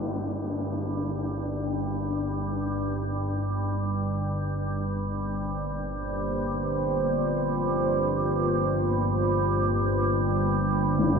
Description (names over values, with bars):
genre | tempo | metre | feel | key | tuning
dark ambient drone | free time | none | none | unclear | A4 = 443 Hz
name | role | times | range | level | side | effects
deep dark ambient pad | sustained chords | 0.2-11.2 s | G3 to C5 | -30 LUFS | equal | chorus, built-in reverb
organ-like drone | drone | 0.0-11.2 s | G1 to G2 | -27 LUFS | right 1 dB | ensemble chorus, built-in reverb, phaser
tam-tam | percussion | 11.0-11.2 s | none | -33 LUFS | left 2 dB | low-pass filter on cymbals
room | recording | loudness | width
wet huge ambient reverb, RT60 7.4 s | none | -25 LUFS | side -6 dB against mid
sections
0.0-11.2 A section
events
fade-in on synth drone 0.0-11.2; fade-in on ambient pad 0.0-11.2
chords
0.0 G5; 3.7 Bbsus2